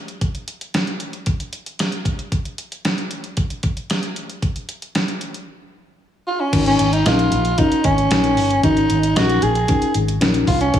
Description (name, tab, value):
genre	early-eighties boogie funk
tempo	114 BPM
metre	4/4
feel	straight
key	unclear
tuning	A4 = 442 Hz
part	detuned 8-bit digital drum machine	drums	0.1-10.8 s	crash cymbal, hi-hat, kick drum, snare drum	-22 LUFS	equal	gated reverb
part	growling soprano saxophone	melody	6.3-10.8 s	Db4 to Ab4	-18 LUFS	right 1 dB	none
part	mellow FM electric piano	accompaniment	6.5-10.8 s	Gb3 to C5	-21 LUFS	left 4 dB	chorus
part	vintage muted fingered electric bass	bass	6.5-10.8 s	G1 to Db2	-20 LUFS	equal	none
room	light reverb, digital ambience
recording	small room ambience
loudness	-17 LUFS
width	side -10 dB against mid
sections	0.0-6.5 A section; 6.5-10.8 B section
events	break 5.5-6.5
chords	0.0 N.C.; 6.5 Ab9sus4